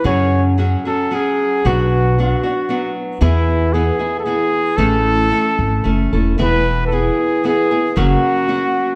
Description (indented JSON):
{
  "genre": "mexican folk, mariachi",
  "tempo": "114 BPM",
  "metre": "3/4",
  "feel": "straight",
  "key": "A major",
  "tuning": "A4 = 440 Hz",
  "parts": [
    { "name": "warm trumpet", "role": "melody", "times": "0.0-9.0 s", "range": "E4 to C#5", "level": "-21 LUFS", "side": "equal", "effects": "none" },
    { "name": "nylon-string guitar", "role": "accompaniment", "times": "0.0-9.0 s", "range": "F#2 to A4", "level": "-21 LUFS", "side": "equal", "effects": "none" },
    { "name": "upright bass", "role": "bass", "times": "0.0-8.1 s", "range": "E1 to F#2", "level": "-20 LUFS", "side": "equal", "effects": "none" }
  ],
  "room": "wet recital hall reverb, RT60 1.7 s",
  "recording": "none",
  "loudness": "-16 LUFS",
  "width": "mono",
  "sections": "0.0-6.4 A section; 6.4-9.0 B section",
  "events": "none",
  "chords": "0.0 F#sus2; 1.7 Bm; 3.2 E; 4.8 A; 6.4 E; 8.0 F#",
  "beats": "| 0.05 0.58 1.12 | 1.65 2.18 2.70 | 3.22 3.74 4.26 | 4.79 5.31 5.85 | 6.39 6.92 7.45 | 7.97 8.49"
}